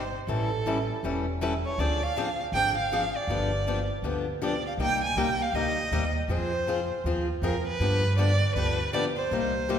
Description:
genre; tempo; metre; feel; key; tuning
acoustic string swing (jazz manouche); 159 BPM; 4/4; swing 63% on 8ths; unclear; A4 = 439 Hz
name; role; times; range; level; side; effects
warm violin; melody; 0.0-9.8 s; A4 to Ab5; -29 LUFS; right 2 dB; none
upright bass; bass; 0.0-9.8 s; E1 to G2; -30 LUFS; right 1 dB; none
picked swing-style acoustic guitar; accompaniment; 0.3-9.8 s; C3 to A4; -30 LUFS; left 3 dB; none
room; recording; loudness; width
wet scoring stage reverb, RT60 1.8 s; recorded in a church or concert hall; -25 LUFS; side -8 dB against mid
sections
0.0-9.8 A section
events
none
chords
0.3 A7; 1.8 Dm7b5; 3.3 G7; 4.8 Cm7; 6.3 Fm; 7.8 G7

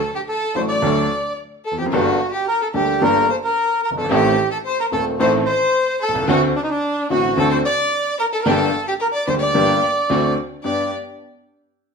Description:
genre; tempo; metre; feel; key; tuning
tango; 110 BPM; 4/4; rubato; G harmonic minor; A4 = 438 Hz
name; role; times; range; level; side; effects
bandoneon; melody; 0.0-10.9 s; D4 to D5; -20 LUFS; right 2 dB; none
rich violin; second line; 0.0-10.9 s; D4 to D5; -24 LUFS; left 5 dB; none
clear upright piano; accompaniment; 0.5-10.9 s; Eb1 to A4; -19 LUFS; left 1 dB; none
warm chamber string section; stabs; 0.5-10.9 s; A3 to A4; -28 LUFS; right 2 dB; none
room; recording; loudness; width
moderate large studio reverb, RT60 0.9 s; minimal, uncompressed stereo recording; -16 LUFS; side -5 dB against mid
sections
0.0-10.7 A section; 10.7-11.9 B section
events
none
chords
0.0 D; 1.9 Gmadd9; 4.1 Adim; 6.3 D7; 8.5 Gm; 10.1 D7; 10.7 G

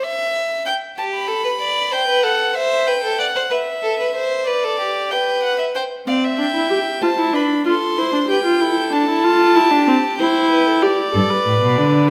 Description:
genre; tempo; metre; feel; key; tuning
classical, baroque-style fugue for string quartet; 95 BPM; 4/4; straight; C major; A4 = 440 Hz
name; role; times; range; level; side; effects
warm violin; melody; 0.0-12.1 s; D5 to C6; -22 LUFS; equal; none
rich violin; second line; 1.0-10.8 s; G4 to E5; -24 LUFS; equal; none
warm viola; accompaniment; 6.1-12.1 s; C4 to B4; -19 LUFS; equal; none
rich cello; bass; 11.1-12.1 s; G2 to D3; -18 LUFS; equal; none
room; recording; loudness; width
wet recital hall reverb, RT60 1.5 s; none; -18 LUFS; mono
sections
0.0-5.7 A section; 5.7-12.1 B section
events
none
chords
0.0 N.C.; 0.7 G; 1.9 Am7; 3.2 N.C.; 4.5 G; 5.7 C; 7.0 D7(no3); 8.3 G5; 9.6 C; 10.8 G

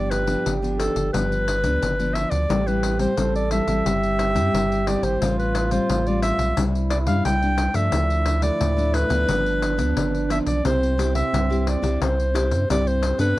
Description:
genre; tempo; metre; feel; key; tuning
samba and choro; 88 BPM; 4/4; straight; C major; A4 = 439 Hz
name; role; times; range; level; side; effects
warm clarinet; melody; 0.0-13.4 s; A4 to G5; -24 LUFS; equal; none
breathy trombone; second line; 0.0-13.3 s; C4 to A4; -29 LUFS; right 5 dB; none
nylon-string guitar; accompaniment; 0.0-13.4 s; G2 to A4; -26 LUFS; left 3 dB; none
warm sub bass; bass; 0.0-13.3 s; G1 to G2; -24 LUFS; equal; none
pandeiro; percussion; 0.1-13.4 s; none; -29 LUFS; left 5 dB; none
room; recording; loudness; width
little or no reverb; dry, close 1970s-style studio recording; -19 LUFS; side -17 dB against mid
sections
0.0-13.4 A section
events
none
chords
0.0 G7; 2.5 Am7; 3.9 C/G; 5.2 Fadd9/A; 6.6 Cadd9; 7.9 Dm; 9.3 G7; 10.7 C

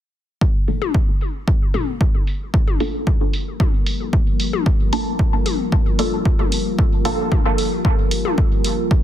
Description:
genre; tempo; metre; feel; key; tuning
dub techno; 113 BPM; 4/4; straight; G minor; A4 = 440 Hz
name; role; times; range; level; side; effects
deep dark ambient pad; sustained chords; 3.3-9.0 s; F4 to Bb4; -25 LUFS; left 2 dB; chorus, built-in reverb, sidechain pumping
electronic kick drum; drums; 0.4-9.0 s; none; -18 LUFS; equal; none
filtered dub chord stab; stabs; 0.7-7.3 s; Bb3 to A4; -25 LUFS; equal; phaser, vintage 12-bit sampler grit, sidechain pumping, dub echo
electronic hi-hat; drums; 0.7-8.8 s; none; -28 LUFS; right 2 dB; low-pass filter on hats
electronic toms; percussion; 0.8-8.4 s; none; -28 LUFS; left 8 dB; overdrive, sidechain pumping on toms, dub echo
room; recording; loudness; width
little or no reverb; dense, heavily limited modern master; -16 LUFS; side -11 dB against mid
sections
0.4-8.9 A section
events
filter sweep on synth stab 0.4-8.9; filter sweep on ambient pad 0.4-8.9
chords
0.4 Gm7

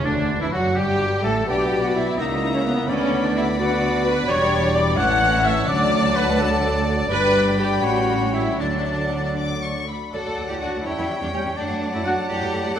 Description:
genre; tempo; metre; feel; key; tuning
classical; 84 BPM (dotted quarters); 6/8; rubato; D major; A4 = 440 Hz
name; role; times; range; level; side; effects
warm symphonic violin section; melody; 0.0-12.8 s; D4 to D6; -32 LUFS; left 6 dB; none
clear oboe; second line; 0.0-12.8 s; D4 to E5; -29 LUFS; right 1 dB; none
dark clarinet; second line; 0.0-12.8 s; A3 to F#5; -30 LUFS; left 2 dB; none
rich studio violin section; second line; 0.0-12.8 s; D4 to G5; -32 LUFS; left 4 dB; none
silver concert flute; second line; 0.0-12.8 s; B4 to F#6; -28 LUFS; left 1 dB; none
dark bassoon; accompaniment; 0.0-12.8 s; D3 to B3; -30 LUFS; right 1 dB; none
rich symphonic viola section; accompaniment; 0.0-12.8 s; G3 to F#5; -24 LUFS; equal; none
rich symphonic double bass section; bass; 0.0-12.8 s; E1 to F#2; -27 LUFS; right 2 dB; none
warm studio cello section; bass; 0.0-12.8 s; D2 to A4; -28 LUFS; right 2 dB; none
mellow French horn section; sustained chords; 0.1-12.8 s; D3 to F#4; -28 LUFS; left 3 dB; none
timpani; percussion; 2.9-6.3 s; D3; -36 LUFS; right 1 dB; none
dark trumpet section; stabs; 10.6-12.8 s; F#5 to G5; -30 LUFS; right 2 dB; none
room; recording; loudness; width
wet concert hall reverb, RT60 2.1 s; none; -18 LUFS; side -9 dB against mid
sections
0.0-10.1 A section; 10.1-12.8 A section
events
none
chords
0.1 D; 1.5 Bm; 2.2 A#dim/C#; 2.9 Bm/D; 4.3 Em7; 5.0 A; 5.7 D; 7.1 G; 7.8 A9; 8.6 D; 10.9 C#dim/E; 11.6 D/F#

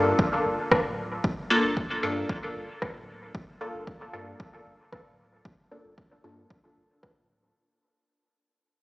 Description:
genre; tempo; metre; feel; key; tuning
dub techno; 114 BPM; 4/4; straight; G minor; A4 = 439 Hz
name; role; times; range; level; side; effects
filtered dub chord stab; stabs; 0.0-7.5 s; Bb3 to A4; -27 LUFS; left 1 dB; phaser, sidechain pumping, dub echo
soft dub sub bass; bass; 0.0-7.5 s; D1 to G2; -37 LUFS; equal; sidechain pumping
electronic kick drum; drums; 0.2-7.1 s; none; -28 LUFS; equal; overdrive
electronic rim click; drums; 0.7-7.1 s; none; -26 LUFS; equal; overdrive, low-pass filter on snare, dub echo
room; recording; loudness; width
moderate huge ambient reverb, RT60 4.8 s; played on a big sound system in a bare room, stone room reverb, small speaker sound; -25 LUFS; side -20 dB against mid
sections
0.0-7.6 A section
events
fade-out 0.0-7.6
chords
0.0 Gm9

